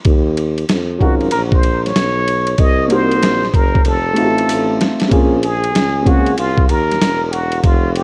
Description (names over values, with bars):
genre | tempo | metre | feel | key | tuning
hip hop, jazz-hop | 95 BPM | 4/4 | swing 65% on 16ths | Bb minor | A4 = 439 Hz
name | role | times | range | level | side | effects
boom bap sampler-style drum kit | drums | 0.0-8.0 s | hi-hat, kick drum, ride cymbal, snare drum | -19 LUFS | equal | none
warm tuba | bass | 0.1-8.0 s | E1 to F2 | -21 LUFS | equal | none
trumpet with plunger mute | melody | 1.0-8.0 s | F4 to Eb5 | -21 LUFS | equal | analog delay
dark baby grand piano | accompaniment | 1.0-6.3 s | Gb3 to Bb4 | -19 LUFS | equal | none
room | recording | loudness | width
light reverb, small room ambience | worn, warbling old tape, cassette tape, warbly pitch drift | -15 LUFS | mono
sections
0.0-5.1 A section; 5.1-8.0 B section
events
drum fill 3.8-5.1; muted trumpet solo 5.1-8.0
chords
0.1 Ebm9; 2.6 Cm7b5; 3.8 F7; 5.1 Bbm9